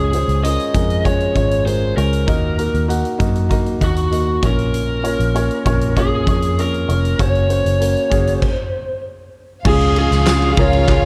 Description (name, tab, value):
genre	piano-driven pop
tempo	98 BPM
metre	4/4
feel	straight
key	Db major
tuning	A4 = 440 Hz
part	lead guitar through a small cranked amp	melody	0.0-11.1 s	Gb4 to Eb5	-23 LUFS	equal	overdrive
part	felt-muted upright piano	accompaniment	0.0-11.1 s	Ab2 to Gb5	-24 LUFS	equal	none
part	vintage muted fingered electric bass	bass	0.0-11.1 s	F1 to Gb2	-21 LUFS	equal	none
part	huge arena drum kit	drums	0.1-11.0 s	crash cymbal, hi-hat, kick drum, ride cymbal, snare drum	-23 LUFS	equal	none
part	warm studio violin section	second line	9.7-11.1 s	F4 to F5	-25 LUFS	equal	none
part	warm studio string section	sustained chords	9.7-11.1 s	Db3 to F4	-29 LUFS	equal	none
part	group handclap	percussion	10.3-11.0 s	none	-32 LUFS	equal	none
room	light reverb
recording	dark, warm production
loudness	-17 LUFS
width	mono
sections	0.0-9.7 A section; 9.7-11.1 B section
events	stop 8.4-9.7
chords	0.0 Db; 2.3 Ebm; 4.4 Bbm; 7.2 Gb; 9.7 Db